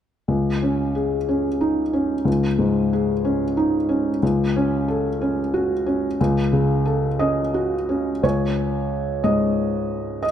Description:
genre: classical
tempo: 61 BPM (dotted quarters)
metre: 6/8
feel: rubato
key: unclear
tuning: A4 = 440 Hz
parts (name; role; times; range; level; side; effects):
- felt-muted upright piano; accompaniment; 0.3-10.3 s; C#2 to D#5; -19 LUFS; equal; none
room: moderate scoring stage reverb, RT60 2.0 s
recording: dark, warm production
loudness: -19 LUFS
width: side -9 dB against mid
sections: 0.3-8.2 A section; 8.2-10.3 B section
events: none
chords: 0.3 G#sus4/C#; 4.2 F#m/C#; 8.2 G#sus4/C#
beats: | 0.28 1.28 | 2.27 3.25 | 4.22 5.20 | 6.19 7.19 | 8.23 9.24 | 10.23

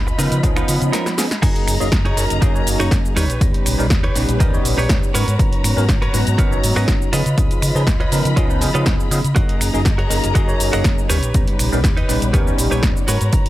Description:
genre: filtered disco house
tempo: 121 BPM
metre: 4/4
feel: straight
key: F# major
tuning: A4 = 442 Hz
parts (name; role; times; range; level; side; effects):
- dark studio string section; sustained chords; 0.0-13.5 s; B3 to B5; -27 LUFS; left 1 dB; sidechain pumping, low-pass filter
- fingered electric bass; bass; 0.0-13.4 s; F#1 to C#3; -20 LUFS; equal; sidechain pumping, low-pass filter
- direct-recorded clean electric guitar; riff; 0.1-13.5 s; D#4 to D#5; -26 LUFS; right 3 dB; sidechain pumping, low-pass filter
- punchy analog drum machine; drums; 0.1-13.5 s; crash cymbal, finger snaps, hi-hat, shaker, snare drum; -24 LUFS; equal; sidechain pumping on hats, sidechain pumping on perc, sidechain pumping on cymbals
- bell-like tine electric piano; accompaniment; 0.2-13.5 s; E#3 to A#5; -23 LUFS; equal; phaser, sidechain pumping, low-pass filter
- electronic kick drum; drums; 0.4-13.4 s; none; -18 LUFS; equal; none
room: digital ambience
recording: none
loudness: -14 LUFS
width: side -15 dB against mid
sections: 0.0-1.4 A section; 1.4-13.5 B section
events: break 0.9-1.4; drum fill 0.9-1.4; drop 1.4-13.5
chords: 0.0 C#9; 1.4 F#69; 3.2 D#7b13; 5.1 G#m11; 7.1 C#9; 9.4 F#69; 11.1 D#7b13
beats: 0.44 0.93 | 1.43 1.92 2.42 2.92 | 3.41 3.91 4.40 4.90 | 5.39 5.89 6.39 6.88 | 7.38 7.87 8.37 8.87 | 9.36 9.86 10.35 10.85 | 11.35 11.84 12.34 12.83 | 13.33

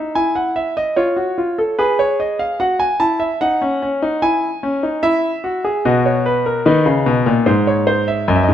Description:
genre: classical, baroque-style 3-part fugue for grand piano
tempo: 74 BPM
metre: 4/4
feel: straight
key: E major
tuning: A4 = 439 Hz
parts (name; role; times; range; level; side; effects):
- clear concert grand piano; solo; 0.0-8.5 s; F#2 to A5; -14 LUFS; equal; none
room: light reverb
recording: close, detailed microphones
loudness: -15 LUFS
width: side -10 dB against mid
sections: 0.0-8.5 A section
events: none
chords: 0.0 E; 1.0 C#7/E#; 2.6 F#m; 4.2 E; 5.8 B; 7.5 G#7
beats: 0.15 0.97 1.79 | 2.60 3.42 4.23 5.04 | 5.85 6.66 7.47 8.28

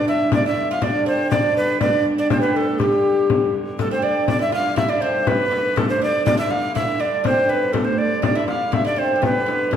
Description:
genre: medieval dance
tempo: 121 BPM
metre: 2/4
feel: straight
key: G mixolydian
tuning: A4 = 445 Hz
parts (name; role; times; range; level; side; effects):
- tenor recorder; melody; 0.0-9.8 s; G4 to F5; -20 LUFS; equal; none
- breathy bright bass ocarina; second line; 0.0-9.8 s; G4 to F5; -27 LUFS; left 2 dB; none
- oud; second line; 0.0-9.8 s; G3 to F4; -25 LUFS; right 4 dB; none
- warm hurdy-gurdy; drone; 0.0-9.8 s; G2 to D3; -28 LUFS; equal; none
- frame drum; percussion; 0.3-9.8 s; none; -23 LUFS; left 3 dB; none
room: wet recital hall reverb, RT60 1.4 s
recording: heard from further back in the room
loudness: -17 LUFS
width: side -9 dB against mid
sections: 0.0-3.8 A section; 3.8-9.8 B section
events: none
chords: none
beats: 0.33 | 0.82 1.31 | 1.81 2.31 | 2.80 3.30 | 3.79 4.29 | 4.78 5.28 | 5.77 6.26 | 6.76 7.25 | 7.75 8.24 | 8.74 9.23 | 9.73

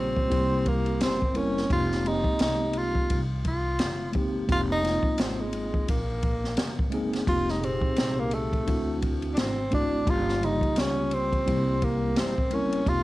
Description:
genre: hip hop, jazz-hop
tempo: 86 BPM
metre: 4/4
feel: swing 58% on 16ths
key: F minor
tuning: A4 = 440 Hz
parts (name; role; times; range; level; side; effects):
- breathy tenor saxophone; melody; 0.0-13.0 s; Ab3 to F4; -28 LUFS; equal; cassette tape, analog delay
- mellow tine electric piano; accompaniment; 0.0-13.0 s; Bb2 to Bb4; -29 LUFS; equal; medium stereo tremolo
- upright bass; bass; 0.0-13.0 s; F1 to D2; -32 LUFS; equal; transformer saturation
- open jazz drum kit; drums; 0.2-13.0 s; hi-hat, kick drum, ride cymbal, snare drum; -29 LUFS; equal; none
room: moderate studio reverb, RT60 0.6 s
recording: home recording on cassette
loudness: -24 LUFS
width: side -18 dB against mid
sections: 0.0-7.3 A section; 7.3-13.0 A section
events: none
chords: 0.3 C7; 1.7 Fm11; 8.7 D7; 10.1 Gm7b5; 11.5 C7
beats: 0.31 1.00 | 1.70 2.40 3.10 3.80 | 4.49 5.19 5.89 6.59 | 7.28 7.98 8.68 9.38 | 10.07 10.77 11.47 12.17 | 12.87

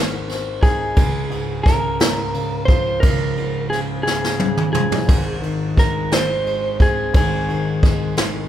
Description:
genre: six-eight pop ballad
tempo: 58 BPM (dotted quarters)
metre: 6/8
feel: straight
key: Ab major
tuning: A4 = 440 Hz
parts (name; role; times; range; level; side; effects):
- clear concert grand piano; accompaniment; 0.0-8.5 s; Ab1 to Eb4; -24 LUFS; left 1 dB; none
- jazz brush drum kit; drums; 0.3-8.3 s; kick drum, ride cymbal, snare drum, toms; -18 LUFS; equal; none
- electric slide guitar; melody; 0.6-8.1 s; Ab4 to C5; -23 LUFS; right 1 dB; digital delay
room: moderate large studio reverb, RT60 1.3 s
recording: band playing live in one room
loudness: -16 LUFS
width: side -11 dB against mid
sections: 0.0-8.5 A section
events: drum fill 4.1-5.1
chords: 0.0 Ab; 1.0 Db; 5.1 Ab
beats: | 0.97 2.00 | 3.03 4.06 | 5.08 6.12 | 7.14 8.17

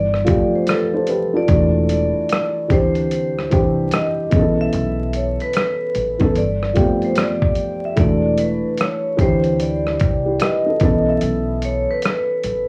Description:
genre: lo-fi hip hop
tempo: 74 BPM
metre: 4/4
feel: swing 63% on 16ths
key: unclear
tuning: A4 = 440 Hz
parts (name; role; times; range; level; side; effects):
- vibraphone with medium hard mallets; melody; 0.0-12.7 s; A4 to E5; -24 LUFS; equal; analog delay
- upright bass; bass; 0.0-12.7 s; E1 to D2; -26 LUFS; equal; none
- dusty soul sampler-style drum kit; drums; 0.1-12.7 s; hi-hat, kick drum, rim click; -22 LUFS; equal; none
- felt-muted upright piano; accompaniment; 0.2-12.7 s; E3 to D5; -22 LUFS; equal; none
room: moderate studio reverb, RT60 0.5 s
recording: worn, warbling old tape, cassette tape, vinyl crackle, warbly pitch drift, small room ambience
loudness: -18 LUFS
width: mono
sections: 0.0-12.7 A section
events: none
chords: 0.0 G9sus4; 1.5 E9sus4; 2.7 D9sus4; 4.3 B9sus4; 6.3 G9sus4; 8.0 E9sus4; 9.2 D9sus4; 10.8 B9sus4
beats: 0.68 | 1.49 2.30 3.11 3.92 | 4.73 5.54 6.35 7.16 | 7.97 8.78 9.59 10.40 | 11.21 12.03

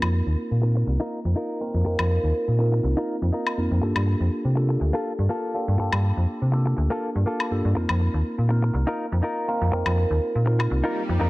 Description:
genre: filtered disco house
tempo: 122 BPM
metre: 4/4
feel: swing 55% on 16ths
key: unclear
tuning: A4 = 440 Hz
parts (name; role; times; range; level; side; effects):
- tine electric piano; accompaniment; 0.0-11.3 s; Bb3 to Bb4; -28 LUFS; right 1 dB; phaser, low-pass filter
- direct-recorded clean electric guitar; riff; 0.0-11.3 s; Bb3 to Bb4; -30 LUFS; left 1 dB; low-pass filter
- slap-like FM bass; bass; 0.0-11.3 s; C2 to C3; -21 LUFS; equal; low-pass filter
- woodblock; drums; 0.0-10.7 s; none; -30 LUFS; left 3 dB; studio reverb
- swell; sound effects; 10.8-11.3 s; none; -33 LUFS; right 1 dB; none
room: little or no reverb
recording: none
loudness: -21 LUFS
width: side -20 dB against mid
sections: 0.0-11.3 A section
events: filter sweep 0.0-11.3; swell 10.8-11.3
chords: 0.0 F7sus4; 3.8 Gm9; 7.8 F7sus4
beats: 0.38 0.87 1.36 | 1.86 2.35 2.84 3.33 | 3.82 4.32 4.81 5.30 | 5.79 6.28 6.78 7.27 | 7.76 8.25 8.74 9.23 | 9.73 10.22 10.71 11.20

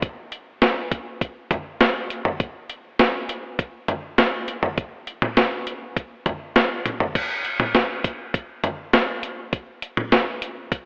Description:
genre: pop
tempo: 101 BPM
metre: 4/4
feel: straight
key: none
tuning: none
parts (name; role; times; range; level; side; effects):
- clean 12-bit digital drum machine; drums; 0.0-10.9 s; crash cymbal, hi-hat, kick drum, snare drum, toms; -20 LUFS; equal; none
room: moderate lush hall reverb, RT60 2.1 s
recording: telephone sound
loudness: -21 LUFS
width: side -37 dB against mid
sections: 0.0-7.2 A section; 7.2-10.9 B section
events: none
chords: none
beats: | 0.02 0.62 1.21 1.81 | 2.40 2.99 3.59 4.18 | 4.78 5.37 5.96 6.56 | 7.15 7.75 8.34 8.94 | 9.53 10.12 10.72

